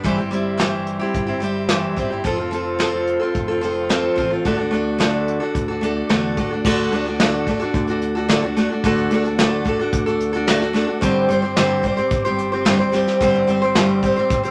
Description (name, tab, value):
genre	folk rock and heartland rock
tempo	109 BPM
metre	4/4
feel	straight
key	unclear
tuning	A4 = 441 Hz
part	picked steel-string acoustic guitar	accompaniment	0.0-14.5 s	G2 to C5	-21 LUFS	equal	none
part	mellow tonewheel organ	sustained chords	0.0-14.5 s	G4 to E6	-37 LUFS	equal	none
part	picked electric bass	bass	0.0-14.5 s	F1 to E2	-32 LUFS	equal	none
part	soft brush drum kit	drums	0.0-14.5 s	crash cymbal, hi-hat, kick drum, snare drum	-25 LUFS	equal	none
room	moderate studio reverb, RT60 0.6 s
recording	none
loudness	-19 LUFS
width	mono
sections	0.0-6.6 A section; 6.6-14.5 B section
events	none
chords	0.1 C/G; 2.2 F; 4.5 D; 11.0 Gsus4